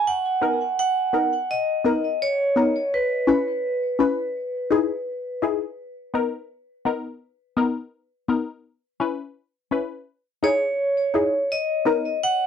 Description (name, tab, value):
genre	reggae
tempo	84 BPM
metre	4/4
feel	swing 59% on 16ths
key	unclear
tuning	A4 = 442 Hz
part	vibraphone with hard mallets	melody	0.0-5.4, 10.4-12.5 s	B4 to F#5	-22 LUFS	right 1 dB	tape echo
part	filtered dub chord stab	stabs	0.4-12.1 s	B3 to B4	-22 LUFS	left 4 dB	phaser
room	moderate booth ambience, RT60 0.2 s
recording	dry, close 1970s-style studio recording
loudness	-21 LUFS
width	side -8 dB against mid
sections	0.1-11.5 A section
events	none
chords	0.1 Bmaj7; 2.9 C#m7; 4.3 Emaj7; 5.8 Bmaj7; 8.6 C#m7; 10.1 Emaj7; 11.5 Bmaj7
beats	| 0.06 0.78 1.49 2.21 | 2.92 3.63 4.35 5.07 | 5.78 6.50 7.21 7.92 | 8.64 9.35 10.07 10.78 | 11.50 12.21